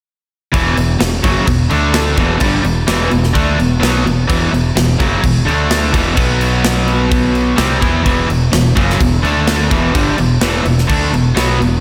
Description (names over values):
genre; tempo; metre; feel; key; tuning
hard rock; 127 BPM; 4/4; straight; E minor; A4 = 440 Hz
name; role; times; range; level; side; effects
cranked stack guitar; riff; 0.5-11.8 s; E2 to E4; -20 LUFS; equal; overdrive
cranked stack guitar; riff; 0.5-11.8 s; E2 to E4; -19 LUFS; equal; overdrive, slapback echo
growling fingered electric bass; bass; 0.5-11.8 s; E1 to E2; -20 LUFS; equal; overdrive
tight metal drum kit; drums; 0.5-11.7 s; crash cymbal, kick drum, snare drum; -19 LUFS; equal; none
room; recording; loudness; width
light reverb, small room ambience; none; -14 LUFS; mono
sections
0.5-11.8 A section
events
none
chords
0.5 E5; 1.7 D5; 2.2 Em; 5.5 D5; 5.9 E5; 6.2 B5; 7.6 Em; 9.2 D5; 9.7 Em